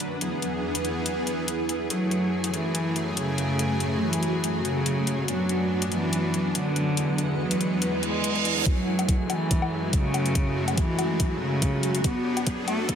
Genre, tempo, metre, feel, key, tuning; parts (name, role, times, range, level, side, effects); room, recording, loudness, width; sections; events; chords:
heavy wobble dubstep; 142 BPM; 4/4; swing 54% on 16ths, half-time; F# minor; A4 = 438 Hz
supersaw chords; sustained chords; 0.0-13.0 s; E2 to B4; -30 LUFS; equal; sidechain pumping
electronic hi-hat and woodblock; drums; 0.0-13.0 s; -30 LUFS; left 5 dB; overdrive
granular cloud pad; texture; 0.0-13.0 s; F#3 to G#5; -30 LUFS; right 1 dB; built-in reverb, sidechain pumping
rich cello; melody; 1.9-13.0 s; C#3 to B3; -27 LUFS; equal; dub echo
reverse cymbal and riser; sound effects; 8.0-13.0 s; -32 LUFS; right 4 dB
electronic kick drum; drums; 8.7-13.0 s; -25 LUFS; equal; overdrive
light reverb, digital ambience; high-pass filter; -23 LUFS; side -8 dB against mid
0.0-8.7 A section; 8.7-13.0 B section
reverse cymbal 8.0-8.7; build-up 8.7-13.0; riser 8.7-13.0; drum fill 12.0-13.0
0.2 E; 1.9 F#madd9; 5.3 Bm/F#; 7.0 E; 8.7 F#madd9; 12.0 Bm/F#